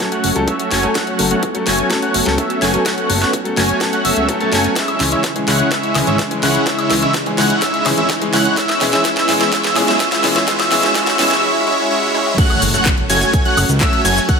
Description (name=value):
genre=EDM, festival progressive house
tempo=126 BPM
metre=4/4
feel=straight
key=F# minor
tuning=A4 = 440 Hz
part: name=bright baby grand piano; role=accompaniment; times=0.0-11.3 s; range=E3 to A4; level=-22 LUFS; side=left 1 dB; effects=sidechain pumping, ping-pong delay
part: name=supersaw pad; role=sustained chords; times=0.0-14.4 s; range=C#3 to A4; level=-24 LUFS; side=equal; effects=phaser, sidechain pumping, low-pass filter
part: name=wide unison lead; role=arpeggios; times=0.0-14.4 s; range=E6 to A6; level=-20 LUFS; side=equal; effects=vintage 12-bit sampler grit, sidechain pumping, ping-pong delay
part: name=supersaw chords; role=riff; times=0.0-14.4 s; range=G#3 to A5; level=-18 LUFS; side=right 1 dB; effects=sidechain pumping, low-pass filter, ping-pong delay
part: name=electronic kick drum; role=drums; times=0.0-14.4 s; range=none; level=-21 LUFS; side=equal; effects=overdrive, high-pass filter on kick, high-pass filter on room
part: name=house drum kit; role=drums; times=0.0-14.4 s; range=crash cymbal, handclaps, hi-hat, shaker, snare drum, toms, woodblock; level=-20 LUFS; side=left 1 dB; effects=overdrive, high-pass filter on snare, high-pass filter on hats, high-pass filter on perc, high-pass filter on toms, high-pass filter on cymbals
part: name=riser, swell and impact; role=sound effects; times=4.4-14.3 s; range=none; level=-27 LUFS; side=equal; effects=none
part: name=fat analog bass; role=bass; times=0.2-14.2 s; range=E1 to C#2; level=-21 LUFS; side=equal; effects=sidechain pumping
room=moderate recital hall reverb, RT60 1.6 s, digital ambience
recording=high-pass filter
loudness=-13 LUFS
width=side -5 dB against mid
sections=0.0-12.4 A section; 12.4-14.4 B section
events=build-up 0.0-12.4; drum fill 0.0-11.4, 12.1; filter sweep on supersaw synth 0.0-12.4; filter sweep on analog synth lead 0.0-12.4; swell 11.4-12.4; drop 12.4-14.4; impact 12.4-14.3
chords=0.0 F#m; 4.8 C#m; 8.6 E; 12.4 F#m